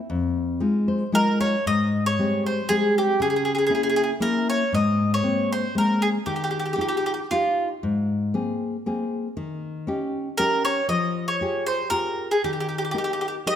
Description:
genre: italian folk, Italian serenade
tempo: 117 BPM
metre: 3/4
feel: straight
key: Ab major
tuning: A4 = 439 Hz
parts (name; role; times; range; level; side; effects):
- nylon-string guitar; accompaniment; 0.1-13.6 s; F2 to F5; -24 LUFS; left 2 dB; none
- mandolin; melody; 1.1-7.7, 10.4-13.6 s; F4 to Eb5; -23 LUFS; right 1 dB; none
- musette accordion; second line; 13.5-13.6 s; G4; -30 LUFS; right 9 dB; none
room: moderate scoring stage reverb, RT60 1.4 s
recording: none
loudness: -21 LUFS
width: side -9 dB against mid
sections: 0.0-1.7 A section; 1.7-13.6 B section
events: nylon-string guitar fill 0.6-1.7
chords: 0.1 Fm7; 1.7 Abmaj7; 3.2 Dbm6; 4.7 Abadd9; 6.3 Ebadd9; 7.8 Abadd9; 9.4 Eb7; 10.9 Fmadd9; 12.4 Eb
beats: | 0.10 0.61 1.13 | 1.65 2.17 2.69 | 3.20 3.71 4.22 | 4.73 5.24 5.76 | 6.27 6.78 7.30 | 7.82 8.34 8.86 | 9.37 9.87 10.38 | 10.89 11.41 11.92 | 12.44 12.95 13.47

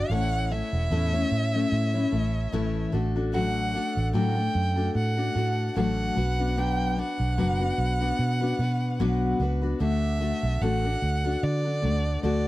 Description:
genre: pop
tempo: 74 BPM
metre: 4/4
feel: swing 55% on 16ths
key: D major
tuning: A4 = 440 Hz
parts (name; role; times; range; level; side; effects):
- rich violin; melody; 0.0-12.5 s; D5 to G5; -31 LUFS; right 2 dB; tape echo
- picked steel-string acoustic guitar; accompaniment; 0.0-12.5 s; A2 to C#5; -28 LUFS; left 3 dB; none
- vintage muted fingered electric bass; bass; 0.0-12.5 s; E1 to D3; -27 LUFS; right 1 dB; none
room: little or no reverb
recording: dry, close 1970s-style studio recording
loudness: -23 LUFS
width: side -16 dB against mid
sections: 0.0-12.5 A section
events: none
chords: 0.1 A; 2.9 D/A; 6.2 Bm; 9.8 D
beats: | 0.10 0.91 1.72 2.53 | 3.34 4.14 4.95 5.76 | 6.57 7.38 8.19 9.00 | 9.81 10.62 11.42 12.23

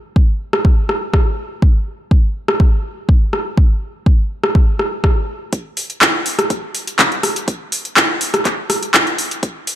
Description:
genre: house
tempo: 123 BPM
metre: 4/4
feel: straight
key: none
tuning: none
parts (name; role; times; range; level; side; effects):
- electronic kick drum; drums; 0.2-9.5 s; none; -13 LUFS; equal; high-pass filter on kick
- deep house drum kit; drums; 0.5-9.8 s; handclaps, hi-hat, rim click; -15 LUFS; equal; overdrive, sidechain pumping on hats
room: little or no reverb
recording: none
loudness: -14 LUFS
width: side -12 dB against mid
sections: 0.0-5.5 A section; 5.5-9.8 B section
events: build-up 5.5-9.8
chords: none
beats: 0.16 0.65 1.14 | 1.62 2.11 2.60 3.09 | 3.58 4.06 4.55 5.04 | 5.53 6.01 6.50 6.99 | 7.48 7.96 8.45 8.94 | 9.43

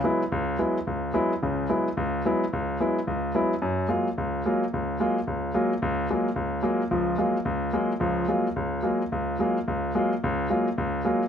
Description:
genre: jazz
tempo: 218 BPM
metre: 4/4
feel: swing 62% on 8ths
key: Gb major from 3.6 s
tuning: A4 = 441 Hz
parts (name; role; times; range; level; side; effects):
- clear concert grand piano; solo; 0.0-11.2 s; Db2 to F4; -24 LUFS; equal; none
room: light reverb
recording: none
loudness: -24 LUFS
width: side -8 dB against mid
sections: 0.0-3.6 A section; 3.6-11.3 B section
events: none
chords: 0.0 Gb9sus4; 3.6 Gbmaj9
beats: 0.04 | 0.31 0.59 0.86 1.14 | 1.42 1.69 1.97 2.24 | 2.52 2.79 3.07 3.34 | 3.62 3.89 4.17 4.44 | 4.72 4.99 5.27 5.54 | 5.81 6.09 6.36 6.64 | 6.91 7.18 7.46 7.73 | 8.01 8.28 8.56 8.83 | 9.11 9.38 9.65 9.93 | 10.20 10.48 10.75 11.03

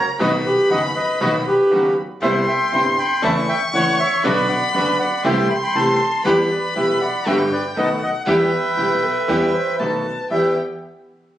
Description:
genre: tango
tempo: 119 BPM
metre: 4/4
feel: rubato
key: E minor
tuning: A4 = 444 Hz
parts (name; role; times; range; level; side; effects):
- bandoneon; melody; 0.0-10.5 s; G4 to C6; -20 LUFS; equal; none
- warm violin; second line; 0.0-10.5 s; F#5 to C#6; -24 LUFS; left 1 dB; none
- bright concert grand piano; accompaniment; 0.2-10.5 s; F#1 to G4; -21 LUFS; equal; none
- rich symphonic string section; stabs; 0.2-10.5 s; A3 to A4; -27 LUFS; equal; none
- upright bass; bass; 0.2-10.5 s; F#1 to E2; -30 LUFS; equal; none
- mellow hollow concert flute; second line; 8.8-10.5 s; A4 to C5; -26 LUFS; right 2 dB; none
room: wet large studio reverb, RT60 1.1 s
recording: recorded on a phone in the room, club reverb, compression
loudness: -16 LUFS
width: side -12 dB against mid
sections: 0.0-10.3 A section; 10.3-11.4 B section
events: none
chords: 0.2 B; 2.2 Cmaj7; 3.2 A/E; 4.2 Bm; 5.2 Am7/C; 6.2 Em; 7.3 Gmaj7; 7.8 B7; 8.3 Em; 9.8 B7; 10.3 Em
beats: | 0.20 0.70 1.21 1.71 | 2.22 2.73 3.23 3.73 | 4.24 4.74 5.25 5.75 | 6.25 6.75 7.26 7.76 | 8.27 8.77 9.28 9.79 | 10.30

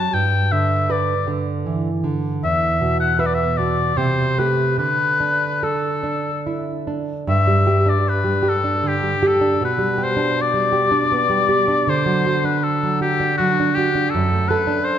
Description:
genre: romantic duo for oboe and classical guitar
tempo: 70-82 BPM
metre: 3/4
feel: rubato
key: G major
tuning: A4 = 440 Hz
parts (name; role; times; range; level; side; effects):
- clear oboe; melody; 0.0-15.0 s; F#4 to A5; -20 LUFS; left 4 dB; none
- nylon-string guitar; accompaniment; 0.0-15.0 s; E2 to B4; -19 LUFS; right 2 dB; none
room: wet concert hall reverb, RT60 2.0 s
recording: recorded in a church or concert hall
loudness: -17 LUFS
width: side -9 dB against mid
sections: 0.0-7.3 A section; 7.3-15.0 B section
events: none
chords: 0.1 G; 2.4 E5; 4.0 Am7/C; 4.8 D5; 7.3 G5; 9.6 G/B; 11.9 D; 14.1 D/F#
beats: | 0.15 0.91 1.67 | 2.43 3.19 3.98 | 4.79 5.63 6.47 | 7.28 8.05 8.83 | 9.61 10.37 11.12 | 11.88 12.64 13.39 | 14.13 14.86

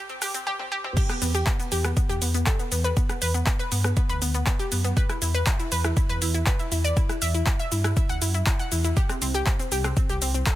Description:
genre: progressive house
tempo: 120 BPM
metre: 4/4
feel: straight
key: E minor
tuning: A4 = 441 Hz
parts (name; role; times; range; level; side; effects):
- analog pluck; arpeggios; 0.0-10.5 s; B3 to F#5; -29 LUFS; equal; chorus, sidechain pumping, digital delay
- big-room dance drum kit; drums; 0.1-10.6 s; cabasa, crash cymbal, handclaps, hi-hat, rim click, toms; -29 LUFS; equal; none
- electronic kick drum; drums; 1.0-10.6 s; none; -24 LUFS; equal; none
- dark detuned saw bass; bass; 1.2-10.4 s; C2 to G2; -26 LUFS; equal; sidechain pumping
room: digital ambience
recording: dense, heavily limited modern master, high-pass filter, faint mains hum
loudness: -22 LUFS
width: side -14 dB against mid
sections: 1.0-10.6 A section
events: drum fill 0.5-1.0; drop 1.0-10.6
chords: 0.0 N.C.; 1.0 E5; 9.0 C5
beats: 0.47 | 0.97 1.47 1.97 2.47 | 2.97 3.47 3.97 4.47 | 4.97 5.47 5.97 6.47 | 6.97 7.47 7.97 8.47 | 8.97 9.47 9.97 10.47

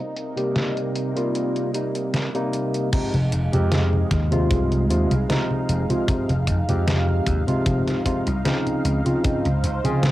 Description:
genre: vaporwave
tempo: 76 BPM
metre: 4/4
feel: swing 53% on 16ths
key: F minor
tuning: A4 = 440 Hz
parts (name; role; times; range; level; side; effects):
- lush unison pad; sustained chords; 0.0-10.1 s; C3 to F5; -29 LUFS; right 1 dB; chorus, phaser, cassette tape, plate reverb
- detuned 8-bit digital drum machine; drums; 0.2-10.1 s; congas, crash cymbal, hi-hat, snare drum; -26 LUFS; equal; cassette tape
- barky tine electric piano; accompaniment; 0.4-10.1 s; C3 to Ab4; -24 LUFS; equal; wide subtle chorus, vintage 12-bit sampler grit, cassette tape, analog delay, plate reverb
- vintage slap bass; bass; 2.9-10.1 s; F1 to Db3; -22 LUFS; equal; none
- kick drum; drums; 2.9-9.4 s; none; -26 LUFS; equal; cassette tape
room: moderate studio reverb, RT60 0.6 s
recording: home recording on cassette, low-pass filter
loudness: -20 LUFS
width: side -15 dB against mid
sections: 0.0-2.9 A section; 2.9-10.1 B section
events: none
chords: 0.0 Cm7; 2.9 Fm7; 8.8 Dbmaj9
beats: 0.56 1.35 2.14 | 2.93 3.72 4.51 5.29 | 6.08 6.87 7.66 8.45 | 9.24 10.03

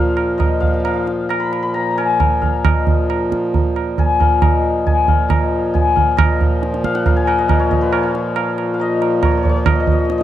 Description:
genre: indian classical, Hindustani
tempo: 136 BPM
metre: 4/4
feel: straight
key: Bb raga bhairavi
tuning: A4 = 440 Hz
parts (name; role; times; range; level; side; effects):
- santur; melody; 0.0-10.2 s; Cb5 to Cb6; -20 LUFS; left 6 dB; cassette tape
- hand-pumped harmonium; drone; 0.0-10.2 s; Bb2 to F3; -19 LUFS; left 1 dB; cassette tape
- tabla; percussion; 0.2-10.2 s; none; -17 LUFS; right 3 dB; none
room: light reverb, small room ambience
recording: home recording on cassette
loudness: -14 LUFS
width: side -12 dB against mid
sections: 0.0-6.2 A section; 6.2-10.2 B section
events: speeding up 0.0-10.2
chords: none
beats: 0.40 | 0.85 1.30 1.75 2.20 | 2.64 3.09 3.54 3.98 | 4.42 4.87 5.31 5.75 | 6.19 6.62 7.06 7.50 | 7.93 8.37 8.80 9.24 | 9.67 10.10

